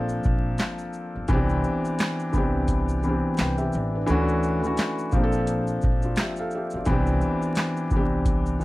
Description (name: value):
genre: lo-fi hip hop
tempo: 86 BPM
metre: 4/4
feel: swing 59% on 16ths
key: C major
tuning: A4 = 440 Hz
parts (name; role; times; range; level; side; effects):
- felt-muted upright piano; accompaniment; 0.0-8.6 s; E3 to G5; -25 LUFS; left 1 dB; cassette tape, low-pass filter
- upright bass; bass; 0.0-8.6 s; G1 to D2; -27 LUFS; equal; none
- booming analog drum machine; drums; 0.1-8.6 s; handclaps, hi-hat, kick drum, shaker, snare drum; -26 LUFS; equal; vintage 12-bit sampler grit
room: light reverb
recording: vinyl crackle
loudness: -22 LUFS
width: side -19 dB against mid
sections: 0.0-8.6 A section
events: none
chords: 0.0 Bbmaj9; 1.3 Cmaj9; 4.1 Dmaj9; 5.1 Bbmaj9; 6.9 Cmaj9